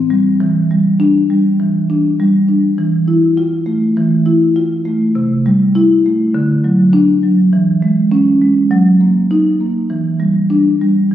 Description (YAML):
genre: classical, contemporary piece for solo marimba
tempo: 101 BPM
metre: 4/4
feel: rubato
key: unclear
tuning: A4 = 440 Hz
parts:
  - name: marimba with soft mallets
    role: solo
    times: 0.0-11.1 s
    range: A2 to F4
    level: -11 LUFS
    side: equal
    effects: none
room: wet scoring stage reverb, RT60 1.9 s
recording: recorded on a phone in the room, studio reverb, compression, nothing above 10.3 kHz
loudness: -11 LUFS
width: side -11 dB against mid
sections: 0.0-11.1 A section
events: none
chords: 0.4 Em7; 2.8 Fmaj7/E; 5.2 C6; 6.3 D; 7.5 E6; 8.7 F#6; 9.9 Em7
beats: | 0.40 1.00 1.60 2.19 | 2.78 3.37 3.96 4.56 | 5.16 5.75 6.34 6.93 | 7.53 8.12 8.72 9.31 | 9.91 10.52 11.12